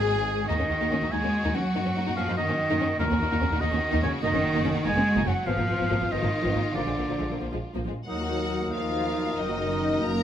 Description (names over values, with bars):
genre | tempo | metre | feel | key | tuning
classical, dramatic, fast romantic movement for symphony orchestra | 89-98 BPM (dotted quarters) | 6/8 | rubato | Eb minor | A4 = 440 Hz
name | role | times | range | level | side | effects
clear symphonic violin section | melody | 0.0-10.2 s | F4 to Bb5 | -36 LUFS | left 3 dB | none
rich symphonic violin section | second line | 0.0-10.2 s | Ab3 to Bb4 | -33 LUFS | left 4 dB | none
warm oboe | second line | 0.0-10.2 s | Ab4 to Ab5 | -30 LUFS | right 1 dB | none
warm symphonic viola section | accompaniment | 0.0-10.2 s | F3 to Gb4 | -33 LUFS | equal | none
clear symphonic cello section | bass | 0.0-10.2 s | Eb2 to Ab3 | -30 LUFS | right 1 dB | none
rich studio double bass section | bass | 0.0-10.2 s | Gb1 to Gb2 | -31 LUFS | right 1 dB | none
timpani | percussion | 3.0-3.6 s | Eb3 | -40 LUFS | equal | none
dark clarinet | second line | 8.1-10.2 s | Eb4 | -36 LUFS | right 1 dB | none
silver concert flute | second line | 8.1-10.2 s | Eb6 | -36 LUFS | left 2 dB | none
mellow bassoon | accompaniment | 8.1-10.2 s | Eb3 | -34 LUFS | left 1 dB | none
mellow French horn section | sustained chords | 8.1-10.2 s | Eb3 to Bb3 | -33 LUFS | left 4 dB | none
room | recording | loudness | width
moderate recital hall reverb, RT60 1.5 s | none | -24 LUFS | side -10 dB against mid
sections
0.0-8.1 A section; 8.1-10.2 B section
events
none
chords
0.5 Ebm; 1.8 Ebm/Gb; 3.0 Ebm; 4.2 Ebm/Gb; 5.5 Fm/Ab; 6.8 Bb; 8.1 Ebm; 9.4 Ebm/Gb